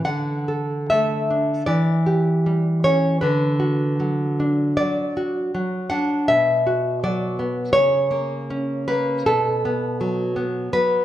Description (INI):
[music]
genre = romantic piece for solo classical guitar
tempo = 78 BPM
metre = 4/4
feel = uneven beats, rubato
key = D major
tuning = A4 = 437 Hz
[part]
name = nylon-string guitar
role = solo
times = 0.0-11.0 s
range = B2 to F#5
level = -19 LUFS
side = equal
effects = none
[sound]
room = wet recital hall reverb, RT60 1.3 s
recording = recorded in a church or concert hall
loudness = -19 LUFS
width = side -12 dB against mid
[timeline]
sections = 0.1-11.0 A section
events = none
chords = 0.1 D; 1.7 C#dim/E; 3.2 D; 6.3 Bm; 7.8 Bbm/Db; 9.3 B5